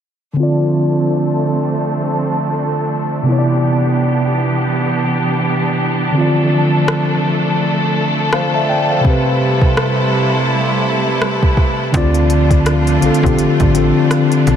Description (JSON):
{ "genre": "contemporary R&B", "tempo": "83 BPM", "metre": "4/4", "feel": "swing 58% on 16ths", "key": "D dorian", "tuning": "A4 = 439 Hz", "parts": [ { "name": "mellow tine electric piano", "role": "accompaniment", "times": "0.3-14.6 s", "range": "C3 to A5", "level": "-15 LUFS", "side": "left 1 dB", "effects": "medium stereo tremolo, low-pass filter" }, { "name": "bright studio string section", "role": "sustained chords", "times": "0.4-14.6 s", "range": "C3 to A4", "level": "-18 LUFS", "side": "right 1 dB", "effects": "sidechain pumping, low-pass filter" }, { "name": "smooth R&B drum kit", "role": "drums", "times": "6.9-14.6 s", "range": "hi-hat, kick drum, rim click", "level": "-20 LUFS", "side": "equal", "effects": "overdrive" }, { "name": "slap-like FM bass", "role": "bass", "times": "11.9-14.6 s", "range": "A1 to D2", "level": "-16 LUFS", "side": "equal", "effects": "none" } ], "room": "moderate huge ambient reverb, RT60 9.2 s", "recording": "dreamy mix soaked in reverb", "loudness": "-13 LUFS", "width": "side -8 dB against mid", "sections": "0.4-11.9 A section; 11.9-14.6 B section", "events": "filter sweep 0.4-11.9", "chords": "0.4 Dm7; 3.3 Cmaj9; 6.2 Dm7; 9.0 Am7/C; 11.9 Dm7" }